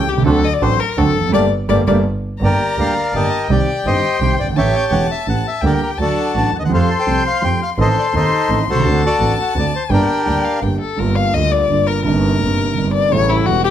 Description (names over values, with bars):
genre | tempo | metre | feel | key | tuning
tango | 168 BPM | 3/4 | rubato | G minor | A4 = 440 Hz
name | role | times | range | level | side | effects
warm violin | second line | 0.0-13.7 s | E4 to C6 | -20 LUFS | left 7 dB | none
warm concert grand piano | accompaniment | 0.0-13.7 s | Eb1 to A4 | -19 LUFS | right 3 dB | none
bandoneon | stabs | 0.0-2.0 s | Bb3 to G4 | -26 LUFS | right 4 dB | none
clear double bass | bass | 0.0-13.7 s | E1 to F2 | -20 LUFS | right 1 dB | none
bandoneon | melody | 2.4-10.6 s | D4 to A5 | -18 LUFS | left 1 dB | slapback echo
room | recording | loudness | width
light reverb | none | -14 LUFS | side -10 dB against mid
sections
0.0-2.4 A section; 2.4-11.0 B section; 11.0-13.7 A section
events
violin solo 0.0-2.4, 11.0-13.7; band accent 1.3-2.4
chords
0.3 D7; 1.3 Gmadd9; 2.4 Gm; 3.5 Cm; 4.6 A7; 5.6 Gm/D; 6.0 D; 6.7 Fadd9; 7.8 Adim; 8.8 D7; 9.9 Gm; 11.0 Gm7; 12.1 Eb6/G; 13.1 A7